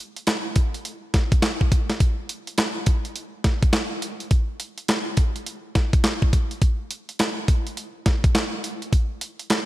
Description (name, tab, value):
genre	R&B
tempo	104 BPM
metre	4/4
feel	swing 63% on 16ths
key	none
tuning	none
part	clean 12-bit digital drum machine	drums	0.2-9.7 s	handclaps, hi-hat, kick drum, snare drum	-20 LUFS	equal	none
room	light reverb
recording	none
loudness	-21 LUFS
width	side -16 dB against mid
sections	0.0-9.7 A section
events	none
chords	none